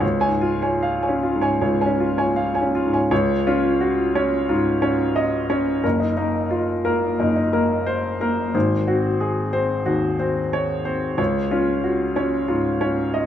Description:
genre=classical, romantic character piece for solo piano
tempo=74-93 BPM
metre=4/4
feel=rubato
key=Db major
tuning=A4 = 440 Hz
part: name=warm baby grand piano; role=solo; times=0.0-13.3 s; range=Gb1 to Ab5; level=-18 LUFS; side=equal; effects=none
room=light reverb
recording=close, detailed microphones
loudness=-18 LUFS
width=side -10 dB against mid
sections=0.0-3.1 A section; 3.1-13.3 B section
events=none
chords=0.0 Db; 5.8 Ebm/Gb; 8.5 Ab7; 11.2 Db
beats=| 0.02 0.82 1.61 2.37 | 3.11 3.80 4.48 5.16 | 5.84 6.51 7.19 7.87 | 8.55 9.21 9.86 10.53 | 11.19 11.85 12.49 13.15

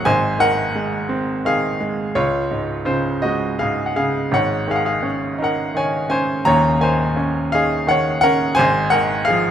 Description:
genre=classical, lyrical solo piano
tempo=85 BPM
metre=3/4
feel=rubato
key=unclear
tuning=A4 = 439 Hz
part: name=bright baby grand piano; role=solo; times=0.0-9.5 s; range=Eb1 to Bb5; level=-16 LUFS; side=equal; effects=none
room=light reverb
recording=none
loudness=-16 LUFS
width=side -9 dB against mid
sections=0.0-9.5 A section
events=none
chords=0.1 Fm7/Ab; 2.2 Db; 4.3 Absus4; 8.6 Fm7/Ab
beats=| 0.06 0.77 1.47 | 2.16 2.87 3.60 | 4.33 5.06 5.77 | 6.48 7.20 7.90 | 8.60 9.29

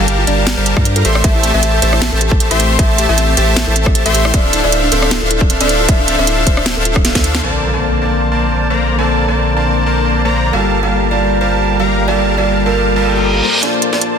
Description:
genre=future bass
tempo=155 BPM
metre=4/4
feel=swing 55% on 16ths, half-time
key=unclear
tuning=A4 = 440 Hz
part: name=buzzing kalimba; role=melody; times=0.0-7.3, 10.5-14.1 s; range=G4 to F5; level=-21 LUFS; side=equal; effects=sidechain pumping, dub echo
part: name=soft round pluck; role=arpeggios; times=0.0-7.4 s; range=C4 to C5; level=-26 LUFS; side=left 2 dB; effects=chorus, sidechain pumping, dub echo
part: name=big bright polysynth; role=riff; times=0.0-14.2 s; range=G3 to C6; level=-15 LUFS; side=equal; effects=sidechain pumping
part: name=saturated sub bass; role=bass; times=0.0-14.2 s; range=D1 to G2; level=-17 LUFS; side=equal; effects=sidechain pumping, high-pass filter
part: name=trap drum kit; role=drums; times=0.1-7.5, 13.6-14.1 s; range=crash cymbal, hi-hat, rim click, snare drum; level=-18 LUFS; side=right 2 dB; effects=high-pass filter on hats, low-pass filter on hats, high-pass filter on snare, low-pass filter on snare, high-pass filter on cymbals, low-pass filter on cymbals
part: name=electronic kick drum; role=drums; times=0.8-7.2 s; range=none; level=-14 LUFS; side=equal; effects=none
part: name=tine electric piano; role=accompaniment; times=7.4-14.2 s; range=D3 to A5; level=-20 LUFS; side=left 3 dB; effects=medium stereo tremolo, sidechain pumping, dub echo
part: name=impact, reverse cymbal and riser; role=sound effects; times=7.4-9.0, 13.0-14.2 s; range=none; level=-21 LUFS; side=right 1 dB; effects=none
room=light reverb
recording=dense, heavily limited modern master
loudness=-11 LUFS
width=side -7 dB against mid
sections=0.0-7.4 A section; 7.4-13.6 B section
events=drop 0.0-7.4; drum fill 7.0-7.4, 13.6-14.2; band accent 7.3; impact 7.4-9.0; reverse cymbal 13.0-13.6; riser 13.6-14.2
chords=0.0 Gm9; 1.0 Am7; 4.3 Dm9; 7.4 Bbmaj9; 10.5 Gm9; 13.4 Bbadd9; 13.6 Bbmaj9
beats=0.08 0.47 0.85 | 1.24 1.63 2.02 2.40 | 2.79 3.18 3.56 3.95 | 4.34 4.72 5.11 5.50 | 5.89 6.27 6.66 7.05 | 7.43 7.82 8.21 8.60 | 8.98 9.37 9.76 10.14 | 10.53 10.92 11.30 11.69 | 12.08 12.47 12.85 13.24 | 13.63 14.02

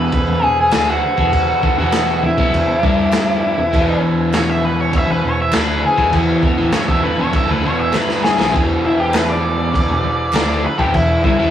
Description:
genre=garage rock duo or trio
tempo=100 BPM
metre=4/4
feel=straight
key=E major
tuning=A4 = 442 Hz
part: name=octave-fuzz lead guitar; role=melody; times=0.0-11.5 s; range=E4 to E5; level=-18 LUFS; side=equal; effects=distortion
part: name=combo organ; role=sustained chords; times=0.0-11.5 s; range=D4 to G#5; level=-25 LUFS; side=right 2 dB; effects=spring reverb
part: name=crunchy overdriven guitar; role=riff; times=0.0-11.5 s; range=E2 to E4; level=-19 LUFS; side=left 1 dB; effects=none
part: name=picked electric bass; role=bass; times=0.0-11.5 s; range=E1 to E2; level=-23 LUFS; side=left 1 dB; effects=none
part: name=crunchy breakbeat drum kit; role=drums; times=0.1-11.4 s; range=crash cymbal, kick drum, snare drum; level=-19 LUFS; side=equal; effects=none
part: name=group handclap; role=percussion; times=0.7-10.5 s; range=none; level=-29 LUFS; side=right 3 dB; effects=none
room=moderate studio reverb, RT60 0.6 s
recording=rough rehearsal-room recording, tube saturation, small room ambience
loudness=-13 LUFS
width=side -10 dB against mid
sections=0.0-11.5 A section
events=lead electric guitar solo 0.0-11.5; drum fill 7.9-8.5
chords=0.0 E; 2.8 G5; 3.6 E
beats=0.13 0.73 | 1.33 1.93 2.53 3.13 | 3.73 4.33 4.93 5.53 | 6.13 6.74 7.34 7.94 | 8.54 9.14 9.74 10.34 | 10.94

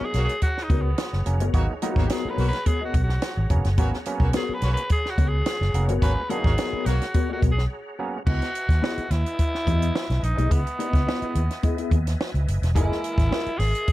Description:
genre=funk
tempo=107 BPM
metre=4/4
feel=straight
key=G# minor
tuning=A4 = 444 Hz
part: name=breathy tenor saxophone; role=melody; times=0.0-13.9 s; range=B3 to B4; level=-29 LUFS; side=equal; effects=none
part: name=mellow electric guitar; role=accompaniment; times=0.0-13.5 s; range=B3 to E5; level=-30 LUFS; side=left 5 dB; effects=wide subtle chorus
part: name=percussive tonewheel organ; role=sustained chords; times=0.0-13.9 s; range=G#4 to A#5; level=-39 LUFS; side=equal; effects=slow rotary speaker, overdrive, chorus vibrato
part: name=mellow clav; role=stabs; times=0.0-8.2, 12.8-13.5 s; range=E3 to E4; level=-32 LUFS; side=right 3 dB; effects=none
part: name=vintage muted fingered electric bass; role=bass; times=0.0-13.7 s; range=E1 to E2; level=-23 LUFS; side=equal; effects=none
part: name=warm horn section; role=second line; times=0.1-7.0 s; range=A#3 to C#5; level=-35 LUFS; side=equal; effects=tube saturation
part: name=compact cocktail drum kit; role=drums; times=0.1-13.9 s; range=crash cymbal, hi-hat, kick drum, snare drum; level=-24 LUFS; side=equal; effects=none
room=little or no reverb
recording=none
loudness=-21 LUFS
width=side -16 dB against mid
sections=0.0-8.3 A section; 8.3-13.9 B section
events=tenor saxophone solo 0.0-8.3; break 7.7-8.3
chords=0.0 G#m11; 8.3 C#m9 (rootless); 12.8 F#13 (rootless)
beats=0.42 0.98 | 1.54 2.10 2.66 3.22 | 3.78 4.34 4.91 5.46 | 6.03 6.59 7.15 7.71 | 8.27 8.83 9.39 9.95 | 10.51 11.07 11.63 12.20 | 12.76 13.32 13.88

